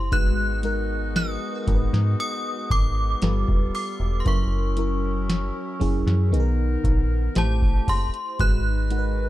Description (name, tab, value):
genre	contemporary R&B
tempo	58 BPM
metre	4/4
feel	straight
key	G# minor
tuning	A4 = 439 Hz
part	synth chime	melody	0.0-9.3 s	A5 to F#6	-30 LUFS	equal	ensemble chorus, phaser, digital delay
part	FM electric piano with soft pad layer	accompaniment	0.0-9.3 s	D#3 to C5	-29 LUFS	left 1 dB	chorus, phaser
part	metallic FM bass	bass	0.0-9.3 s	E1 to G#2	-24 LUFS	equal	none
part	warm woodwind section	sustained chords	0.1-9.3 s	F#3 to B4	-36 LUFS	left 1 dB	none
part	booming analog drum machine	drums	0.1-9.1 s	hi-hat, kick drum, snare drum	-23 LUFS	equal	vintage 12-bit sampler grit
room	little or no reverb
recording	dark, warm production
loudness	-21 LUFS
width	side -15 dB against mid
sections	0.0-9.3 A section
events	none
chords	0.1 G#m7; 3.2 G9; 4.3 F#7; 6.3 Bmaj7; 7.4 Am7; 8.4 G#m7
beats	| 0.12 1.15 2.19 3.22 | 4.26 5.29 6.33 7.36 | 8.39